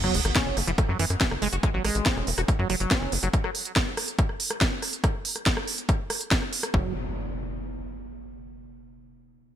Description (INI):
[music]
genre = psychedelic trance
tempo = 141 BPM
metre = 4/4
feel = straight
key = F# minor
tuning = A4 = 440 Hz
[part]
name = liquid acid bass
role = riff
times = 0.0-3.3, 6.7-6.9 s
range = E3 to F#4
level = -30 LUFS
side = moving between left 6 dB and right 4 dB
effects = chorus, auto-pan, sidechain pumping, ping-pong delay
[part]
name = tight sequencer bass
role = bass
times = 0.0-3.3, 6.7-6.9 s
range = E1 to F#2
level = -28 LUFS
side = equal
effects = none
[part]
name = techno drum kit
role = drums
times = 0.0-6.7 s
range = hi-hat, rim click, snare drum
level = -27 LUFS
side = right 1 dB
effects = none
[part]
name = sub drop and impact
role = sound effects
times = 0.0-1.6, 6.9-8.4 s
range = none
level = -36 LUFS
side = equal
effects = none
[part]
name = electronic kick drum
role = drums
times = 0.4-6.8 s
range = none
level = -24 LUFS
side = equal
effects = none
[sound]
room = light reverb, digital ambience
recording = none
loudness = -23 LUFS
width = side -10 dB against mid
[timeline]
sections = 0.0-6.7 A section; 6.7-8.4 B section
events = impact 0.0-1.6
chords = 0.0 F#5; 6.7 N.C.